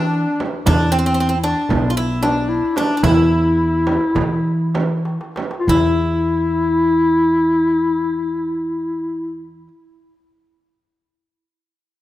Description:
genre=Turkish makam ensemble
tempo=186-232 BPM (eighths)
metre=9/8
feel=straight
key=unclear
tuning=A4 = 440 Hz
part: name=Greek bouzouki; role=melody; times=0.0-9.7 s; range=C4 to F4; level=-22 LUFS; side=right 1 dB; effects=none
part: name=dark clarinet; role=second line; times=0.0-9.4 s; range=C4 to F4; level=-18 LUFS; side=left 2 dB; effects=none
part: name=upright bass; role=bass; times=0.0-9.7 s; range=B1 to E3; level=-20 LUFS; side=equal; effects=none
part: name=darbuka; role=percussion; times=0.4-6.0 s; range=none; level=-30 LUFS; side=equal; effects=none
part: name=frame drum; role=percussion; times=0.4-6.0 s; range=none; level=-24 LUFS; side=right 4 dB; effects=none
room=light reverb, small room ambience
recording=rough home demo mix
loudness=-15 LUFS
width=side -14 dB against mid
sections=0.0-5.7 A section; 5.7-8.6 B section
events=slowing down 1.2-5.7; drum fill 5.1-5.7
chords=none

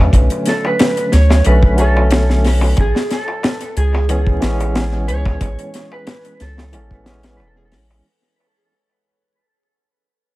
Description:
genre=trip hop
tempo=91 BPM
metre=4/4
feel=swing 54% on 16ths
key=unclear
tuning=A4 = 440 Hz
part: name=barky tine electric piano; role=accompaniment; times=0.0-8.1 s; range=D3 to C#4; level=-21 LUFS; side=equal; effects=overdrive, medium tremolo, tape echo
part: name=soft dub sub bass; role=bass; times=0.0-8.0 s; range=E1 to E2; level=-14 LUFS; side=equal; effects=none
part: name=deep reggae drum kit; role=drums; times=0.1-7.9 s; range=hi-hat, kick drum, snare drum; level=-16 LUFS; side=equal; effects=small room ambience, tape echo
part: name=darbuka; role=percussion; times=0.1-8.0 s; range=none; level=-28 LUFS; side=left 2 dB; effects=tape echo
part: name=electric slide guitar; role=melody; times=0.5-7.7 s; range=G#4 to C#5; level=-22 LUFS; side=right 1 dB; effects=dub echo
room=studio reverb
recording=echo-heavy mix, vinyl crackle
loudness=-13 LUFS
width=side -18 dB against mid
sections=0.0-8.0 A section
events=fade-out 1.0-8.0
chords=0.0 Bm7; 2.8 Amaj7

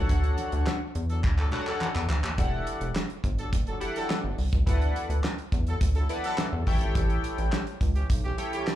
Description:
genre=early-eighties boogie funk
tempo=105 BPM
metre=4/4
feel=straight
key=D major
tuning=A4 = 440 Hz
part: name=chorused polysynth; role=accompaniment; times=0.0-8.7 s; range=D4 to G5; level=-32 LUFS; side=left 2 dB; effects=slapback echo
part: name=rubbery square bass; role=bass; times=0.0-8.3 s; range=E1 to E2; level=-26 LUFS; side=equal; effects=none
part: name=damped 70s drum kit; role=drums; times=0.1-8.8 s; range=handclaps, hi-hat, kick drum, snare drum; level=-29 LUFS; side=equal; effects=none
part: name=congas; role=percussion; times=0.1-2.2 s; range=none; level=-37 LUFS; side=equal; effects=slapback echo
part: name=clear horn section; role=second line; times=1.1-8.8 s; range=E3 to A4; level=-35 LUFS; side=right 2 dB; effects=slapback echo
room=little or no reverb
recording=live gig heard through the venue's PA, club reverb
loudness=-25 LUFS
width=side -13 dB against mid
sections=0.0-2.4 A section; 2.4-8.8 A section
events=drum fill 1.2-2.4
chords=0.0 Dmaj7; 2.4 Em11; 4.7 D69; 6.7 A7

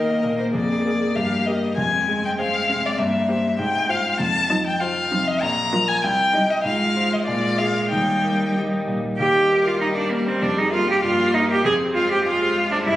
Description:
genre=quick classical-period movement for piano quartet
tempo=98 BPM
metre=2/4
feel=rubato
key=Eb major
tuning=A4 = 442 Hz
part: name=dark violin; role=melody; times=0.0-13.0 s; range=Bb4 to Bb5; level=-22 LUFS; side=left 2 dB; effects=none
part: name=clear cello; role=second line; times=0.0-13.0 s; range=F3 to Ab4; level=-22 LUFS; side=right 1 dB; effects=none
part: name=rich viola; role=accompaniment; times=0.0-12.9 s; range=G3 to Bb4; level=-30 LUFS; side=equal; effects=none
part: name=warm concert grand piano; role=accompaniment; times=0.0-13.0 s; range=Bb1 to Eb5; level=-25 LUFS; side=left 1 dB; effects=none
room=wet concert hall reverb, RT60 2.4 s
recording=recorded on a phone in the room, studio reverb, compression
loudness=-18 LUFS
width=side -14 dB against mid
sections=0.0-9.2 A section; 9.2-13.0 A section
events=none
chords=0.0 Eb5; 0.5 Bb7/F; 1.2 Eb/G; 1.8 Fm; 3.0 C7/G; 3.6 Fm/Ab; 4.2 F5; 5.4 Bb; 6.0 Cm; 6.6 Fm/Ab; 7.3 Bb7; 7.9 Eb; 10.4 Bb5/F; 11.0 Gm7; 11.7 Fm

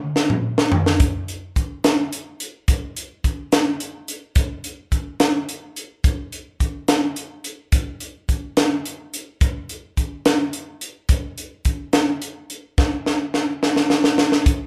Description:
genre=rock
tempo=71 BPM (dotted quarters)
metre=6/8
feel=straight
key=none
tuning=none
part: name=crisp fusion drum kit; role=drums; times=0.2-14.6 s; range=hi-hat, kick drum, snare drum, toms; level=-20 LUFS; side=equal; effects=none
room=moderate large studio reverb, RT60 0.8 s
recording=band playing live in one room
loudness=-21 LUFS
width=mono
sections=1.0-14.5 A section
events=drum fill 0.0-1.0, 12.8-14.5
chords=none

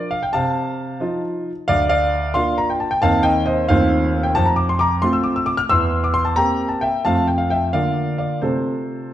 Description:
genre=classical-period piano sonatina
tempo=89 BPM (dotted quarters)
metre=6/8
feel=rubato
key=F major from 4.4 s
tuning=A4 = 443 Hz
part: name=warm concert grand piano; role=solo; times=0.0-9.1 s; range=D2 to F6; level=-17 LUFS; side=equal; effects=none
room=wet recital hall reverb, RT60 1.5 s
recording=dark, warm production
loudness=-17 LUFS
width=side -12 dB against mid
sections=0.0-9.1 A section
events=none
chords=0.3 F7/C; 1.7 Bb/D; 3.0 Cm7/Eb; 3.7 F7/Eb; 4.4 F; 5.7 C7/E; 7.0 F; 7.7 Bb/D; 8.4 F/C

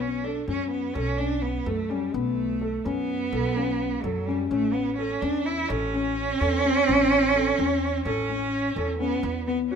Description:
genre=contemporary instrumental, chamber music in an uneven meter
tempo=254 BPM (eighths)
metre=5/8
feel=straight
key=B minor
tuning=A4 = 440 Hz
part: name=warm cello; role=melody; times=0.0-9.8 s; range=F#3 to E4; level=-25 LUFS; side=right 5 dB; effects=none
part: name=felt-muted upright piano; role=arpeggios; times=0.0-9.8 s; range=B3 to A4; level=-28 LUFS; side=left 6 dB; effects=none
part: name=upright bass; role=bass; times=0.0-9.8 s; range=A1 to F#2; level=-32 LUFS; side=equal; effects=none
room=moderate recital hall reverb, RT60 1.7 s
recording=close, detailed microphones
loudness=-23 LUFS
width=side -6 dB against mid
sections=0.0-9.2 A section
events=none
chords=0.0 Bsus2; 4.5 A; 9.2 E5

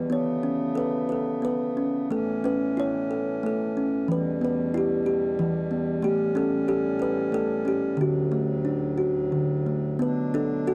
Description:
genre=children's music, lullaby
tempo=91 BPM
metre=3/4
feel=rubato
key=unclear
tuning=A4 = 440 Hz
part: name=kalimba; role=melody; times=0.0-10.7 s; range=D3 to C#5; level=-26 LUFS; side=equal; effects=none
part: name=pedal harmonium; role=sustained chords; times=0.0-10.7 s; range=D2 to D4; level=-36 LUFS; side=equal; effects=none
room=moderate studio reverb, RT60 0.6 s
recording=dark, warm production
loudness=-26 LUFS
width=mono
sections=0.0-10.0 A section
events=none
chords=0.1 Aadd9; 2.1 A; 4.1 Em; 6.0 A7; 8.0 D; 10.0 Bm

